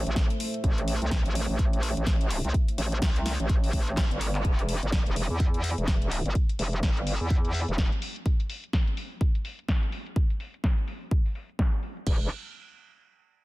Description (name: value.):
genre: bass house.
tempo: 126 BPM.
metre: 4/4.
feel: swing 59% on 16ths.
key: unclear.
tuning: A4 = 443 Hz.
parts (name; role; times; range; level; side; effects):
dark analog pad; sustained chords; 0.0-4.4 s; A3 to E5; -38 LUFS; right 2 dB; chorus, sidechain pumping.
metallic wobble bass; bass; 0.0-7.9, 12.1-12.3 s; E1 to E2; -28 LUFS; equal; chorus, overdrive, sidechain pumping.
house drum kit; drums; 0.1-12.0 s; handclaps, hi-hat, snare drum; -34 LUFS; equal; low-pass filter on hats, low-pass filter on snare.
house drum kit; drums; 0.2-12.2 s; crash cymbal, kick drum; -25 LUFS; equal; none.
room: little or no reverb.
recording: dense, heavily limited modern master.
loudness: -25 LUFS.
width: side -19 dB against mid.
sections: 0.0-4.4 A section; 4.4-12.1 B section; 12.1-13.4 C section.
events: drop 0.0-4.4; drum fill 4.0-4.4; band accent 4.3; filter sweep on drum 4.4-12.1.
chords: 0.0 Am; 4.4 N.C..